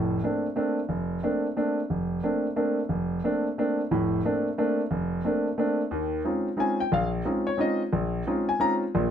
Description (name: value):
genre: jazz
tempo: 179 BPM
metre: 3/4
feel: swing 63% on 8ths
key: Bb major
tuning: A4 = 440 Hz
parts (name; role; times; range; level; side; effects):
- clear concert grand piano; solo; 0.0-9.1 s; F1 to Bb5; -24 LUFS; equal; none
room: light reverb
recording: dark, warm production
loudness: -24 LUFS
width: side -8 dB against mid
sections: 0.0-5.9 A section; 5.9-9.1 B section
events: none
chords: 0.0 Bbmaj9; 5.9 Eb13sus4